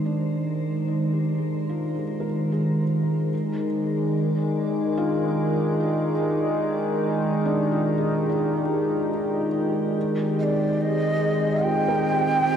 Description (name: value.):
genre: ambient.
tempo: 73 BPM.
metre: 4/4.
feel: straight.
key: Ab lydian.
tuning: A4 = 440 Hz.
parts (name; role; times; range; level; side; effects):
glassy FM pad; sustained chords; 0.0-12.6 s; Eb3 to Eb5; -32 LUFS; equal; ensemble chorus, built-in reverb.
felt-muted upright piano; arpeggios; 0.0-12.6 s; D4 to Bb4; -33 LUFS; left 1 dB; diffuse ambient delay.
analog drone; drone; 0.0-12.6 s; Eb3 to Ab3; -23 LUFS; equal; chorus.
breathy mellow long shakuhachi; melody; 10.4-12.6 s; D5 to G5; -23 LUFS; right 2 dB; none.
room: wet cathedral reverb, RT60 5.2 s.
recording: in a vast, echoing space, cassette tape.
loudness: -21 LUFS.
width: side -8 dB against mid.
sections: 0.0-12.6 A section.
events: fade-in on ambient pad 0.0-12.6; fade-in on felt piano 0.0-12.6.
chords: 0.0 Abmaj7; 10.0 Cm7.